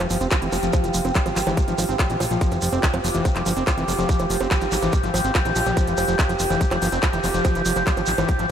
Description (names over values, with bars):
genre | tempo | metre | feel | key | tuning
psychedelic trance | 143 BPM | 4/4 | straight | F harmonic minor | A4 = 440 Hz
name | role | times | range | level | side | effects
overtone-sweeping drone | sustained chords | 0.0-8.5 s | G4 | -26 LUFS | right 2 dB | chorus, built-in reverb, sidechain pumping
overdriven acid bass | riff | 0.0-8.5 s | E3 to F4 | -26 LUFS | equal | auto-pan, sidechain pumping, analog delay
fat analog bass | bass | 0.0-8.4 s | F1 to Bb1 | -27 LUFS | equal | tube saturation
techno drum kit | drums | 0.0-8.5 s | bongos, handclaps, hi-hat | -27 LUFS | right 1 dB | small room ambience
shekere | percussion | 0.0-8.5 s | none | -33 LUFS | right 4 dB | none
granular cloud pad | texture | 0.0-8.5 s | F4 to F5 | -32 LUFS | left 1 dB | built-in reverb, sidechain pumping
electronic kick drum | drums | 0.3-8.4 s | none | -20 LUFS | equal | small room ambience
room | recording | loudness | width
moderate huge ambient reverb, RT60 4.3 s | dreamy mix soaked in reverb | -19 LUFS | side -9 dB against mid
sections
0.0-8.5 A section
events
none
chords
0.0 F5